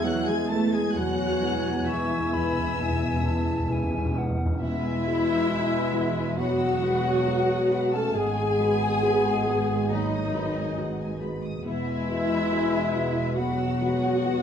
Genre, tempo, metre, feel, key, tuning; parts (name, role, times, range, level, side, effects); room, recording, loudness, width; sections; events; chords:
cinematic, emotional film score for orchestra; 68 BPM; 4/4; rubato; E major; A4 = 442 Hz
warm symphonic violin section; melody; 0.0-14.4 s; F#5 to A6; -40 LUFS; left 3 dB
dark clarinet; second line; 0.0-14.4 s; F#3 to G#5; -33 LUFS; left 2 dB
warm symphonic violin section; second line; 0.0-14.4 s; D#5 to A5; -35 LUFS; left 3 dB
dark symphonic viola section; accompaniment; 0.0-14.4 s; D#4 to A4; -28 LUFS; equal
felt-muted upright piano; accompaniment; 0.0-14.4 s; D#2 to B4; -32 LUFS; left 2 dB
dark French horn section; sustained chords; 0.0-14.4 s; D#3 to A3; -31 LUFS; left 4 dB
dark symphonic cello section; bass; 0.0-14.4 s; E2 to A3; -35 LUFS; right 4 dB
warm symphonic double bass section; bass; 0.0-14.4 s; E1 to E2; -33 LUFS; right 4 dB
timpani; percussion; 1.0-5.9 s; E2; -29 LUFS; equal
hollow silver concert flute; second line; 1.9-14.4 s; D#5 to C#6; -34 LUFS; left 1 dB
wet recital hall reverb, RT60 1.3 s; minimal, uncompressed stereo recording; -23 LUFS; side -8 dB against mid
0.0-4.6 A section; 4.6-14.4 B section
timpani fill 1.0-4.6
0.0 Eadd9; 1.0 E; 4.6 Eadd9; 8.2 G#m7; 11.7 Eadd9